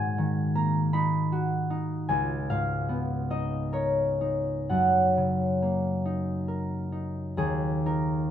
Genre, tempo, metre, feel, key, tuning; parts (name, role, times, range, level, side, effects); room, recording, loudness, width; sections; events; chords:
classical, solo harp piece; 41-53 BPM (dotted quarters); 6/8; rubato; F# major; A4 = 440 Hz
concert harp; solo; 0.0-8.3 s; C#2 to B5; -25 LUFS; equal
light reverb; close, detailed microphones; -25 LUFS; side -10 dB against mid
0.0-7.4 A section
0.0 G#m9; 2.1 C#13; 4.7 F#6; 7.4 Ebm